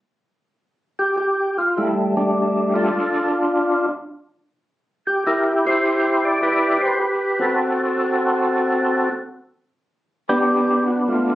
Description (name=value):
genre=jazz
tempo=103 BPM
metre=4/4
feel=swing 67% on 8ths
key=G major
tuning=A4 = 440 Hz
part: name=overdriven tonewheel organ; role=solo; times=1.0-11.3 s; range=G3 to D5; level=-17 LUFS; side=equal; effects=slow rotary speaker, chorus vibrato
room=moderate club reverb, RT60 0.7 s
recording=recorded on a phone in the room, club reverb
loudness=-17 LUFS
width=side -15 dB against mid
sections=0.0-11.3 A section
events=none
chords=0.0 N.C.; 0.6 Fadd9; 2.9 Dm; 4.1 N.C.; 5.2 Cmaj9#11; 7.6 F#dim/C; 9.9 Gadd9